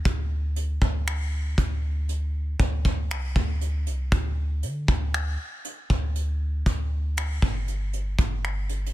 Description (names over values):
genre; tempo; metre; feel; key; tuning
contemporary R&B; 59 BPM; 4/4; straight; unclear; A4 = 440 Hz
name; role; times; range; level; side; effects
clean 808-style bass; bass; 0.0-8.9 s; G1 to D3; -26 LUFS; equal; none
soft brush drum kit; drums; 0.1-8.9 s; finger snaps, hi-hat, kick drum; -26 LUFS; equal; soft clipping on kick, soft clipping on snare
room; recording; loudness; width
little or no reverb; dense, heavily limited modern master; -24 LUFS; side -16 dB against mid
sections
0.0-8.9 A section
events
none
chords
none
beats
| 0.05 1.07 2.09 3.10 | 4.12 5.14 6.15 7.17 | 8.19